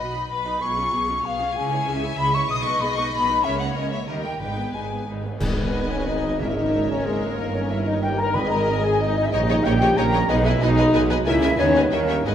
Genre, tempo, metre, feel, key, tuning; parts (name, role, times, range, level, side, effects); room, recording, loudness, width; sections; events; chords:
classical, dramatic, fast romantic movement for symphony orchestra; 185 BPM; 3/4; rubato; G# minor; A4 = 440 Hz
warm symphonic violin section; melody; 0.0-12.3 s; D#5 to D#6; -34 LUFS; left 4 dB
mellow hollow concert flute; second line; 0.0-12.3 s; G#4 to D#6; -26 LUFS; left 2 dB
rich symphonic violin section; second line; 0.0-12.3 s; G#4 to E5; -34 LUFS; left 4 dB
rich symphonic viola section; accompaniment; 0.0-12.3 s; G3 to D#5; -32 LUFS; left 1 dB
clear symphonic double bass section; bass; 0.0-12.3 s; G1 to D#2; -28 LUFS; right 2 dB
rich symphonic cello section; bass; 0.0-12.3 s; G2 to D#3; -29 LUFS; right 2 dB
warm French horn section; sustained chords; 0.6-12.3 s; G3 to B4; -25 LUFS; left 2 dB
cymbal swell, clash cymbals and concert bass drum; percussion; 3.4-6.0 s; -33 LUFS; equal
timpani; percussion; 4.4-8.8, 12.3 s; G#2; -32 LUFS; left 1 dB
dark clarinet; second line; 5.4-12.3 s; G#4 to B5; -29 LUFS; left 1 dB
dark trombone section; sustained chords; 5.4-12.3 s; G2 to C#4; -29 LUFS; right 3 dB
warm tuba; bass; 5.4-12.3 s; G1 to D#2; -28 LUFS; right 2 dB
wet concert hall reverb, RT60 2.1 s; -19 LUFS; side -9 dB against mid
0.0-5.4 A section; 5.4-12.3 B section
band accent 5.4-5.7
0.0 B; 0.6 C#7/B; 1.6 C#m; 2.5 G#m/B; 3.4 C#m69; 4.1 D#; 4.4 G#m; 6.4 A#m7b5/G#; 7.4 D#7/G; 8.3 G#5; 9.3 D#7/A#; 10.3 G#m/B; 11.3 A#m7b5/C#; 11.6 G#m/D#; 11.9 D#7b9